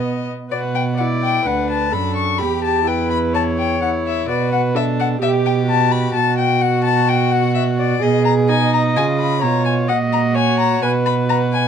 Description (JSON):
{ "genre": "quick classical-period movement for string quartet", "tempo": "128 BPM", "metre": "4/4", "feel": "straight", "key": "B minor", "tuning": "A4 = 440 Hz", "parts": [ { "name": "rich violin", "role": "melody", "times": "0.0-11.7 s", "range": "D5 to C#6", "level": "-20 LUFS", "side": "left 8 dB", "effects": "none" }, { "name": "warm violin", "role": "second line", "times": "0.0-11.7 s", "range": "B3 to G#4", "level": "-25 LUFS", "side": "left 4 dB", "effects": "none" }, { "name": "warm viola", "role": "accompaniment", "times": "0.0-11.7 s", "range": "B3 to D#5", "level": "-22 LUFS", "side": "right 2 dB", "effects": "none" }, { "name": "rich cello", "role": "bass", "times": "0.0-11.7 s", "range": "D2 to C#3", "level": "-19 LUFS", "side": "right 5 dB", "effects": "none" } ], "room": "light reverb", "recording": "dark, warm production", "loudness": "-15 LUFS", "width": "side -8 dB against mid", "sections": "0.5-11.7 A section", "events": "none", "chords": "0.0 B; 0.5 Bm; 1.5 D; 2.4 Em; 4.3 Bm; 5.2 Gmaj9/B; 6.2 B5; 8.0 G#m/B; 9.0 C#; 9.9 F#/A#; 10.8 G#m7/B (rootless)" }